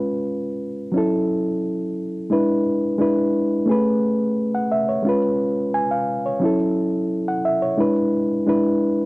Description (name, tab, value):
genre	soul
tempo	88 BPM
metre	4/4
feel	straight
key	unclear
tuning	A4 = 438 Hz
part	reed electric piano	solo	0.0-9.1 s	F#3 to G#5	-18 LUFS	equal	none
room	wet booth ambience, RT60 0.2 s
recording	home recording on cassette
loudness	-18 LUFS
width	side -22 dB against mid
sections	0.0-9.1 A section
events	none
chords	0.0 C#7; 1.0 F#m7; 2.3 E7; 3.7 Amaj9; 5.1 C#7; 6.4 F#m7; 7.8 E7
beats	0.27 | 0.95 1.64 2.32 3.01 | 3.69 4.38 5.06 5.74 | 6.43 7.11 7.80 8.48